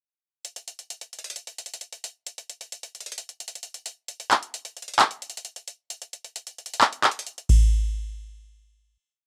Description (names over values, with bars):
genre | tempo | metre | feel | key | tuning
hip hop | 132 BPM | 4/4 | half-time | none | none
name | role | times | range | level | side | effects
booming analog drum machine | drums | 0.4-7.6 s | crash cymbal, handclaps, hi-hat, kick drum | -26 LUFS | equal | none
room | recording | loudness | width
little or no reverb | rough home demo mix | -27 LUFS | mono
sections
0.4-7.7 breakdown; 7.7-9.3 final hit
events
none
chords
none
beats
| 0.45 0.90 1.36 1.81 | 2.27 2.72 3.17 3.63 | 4.08 4.54 4.99 5.45 | 5.90 6.36 6.81 7.27